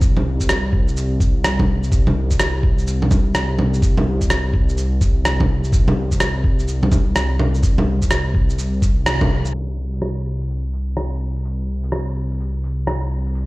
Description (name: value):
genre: future garage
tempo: 126 BPM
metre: 4/4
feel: swing 63% on 16ths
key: unclear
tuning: A4 = 440 Hz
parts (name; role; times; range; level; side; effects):
- dark detuned saw bass; bass; 0.0-13.5 s; C2; -20 LUFS; equal; sidechain pumping
- electronic kick drum; drums; 0.0-9.3 s; none; -18 LUFS; equal; none
- electronic shaker, bongos and rim click; drums; 0.0-13.5 s; none; -21 LUFS; right 1 dB; low-pass filter on perc, low-pass filter on snare, low-pass filter on room
room: light reverb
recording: played on a big sound system in a bare room, large studio reverb, low-pass filter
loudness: -16 LUFS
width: side -20 dB against mid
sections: 0.0-9.5 A section; 9.5-13.5 B section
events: band accent 9.1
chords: none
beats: | 0.01 0.49 0.97 1.44 | 1.92 2.40 2.87 3.35 | 3.82 4.30 4.78 5.25 | 5.73 6.21 6.68 7.16 | 7.63 8.11 8.59 9.06 | 9.54 10.02 10.49 10.97 | 11.44 11.92 12.39 12.87 | 13.35